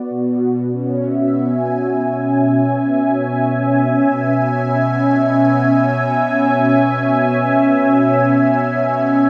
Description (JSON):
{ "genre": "ambient", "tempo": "free time", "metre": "none", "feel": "none", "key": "unclear", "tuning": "A4 = 440 Hz", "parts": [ { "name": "warm analog pad", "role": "sustained chords", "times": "0.0-9.3 s", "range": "B2 to G#5", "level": "-16 LUFS", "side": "equal", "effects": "chorus" } ], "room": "wet huge ambient reverb, RT60 7.9 s", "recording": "none", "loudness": "-16 LUFS", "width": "mono", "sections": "0.0-9.3 A section", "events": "none", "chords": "0.1 C#m/B" }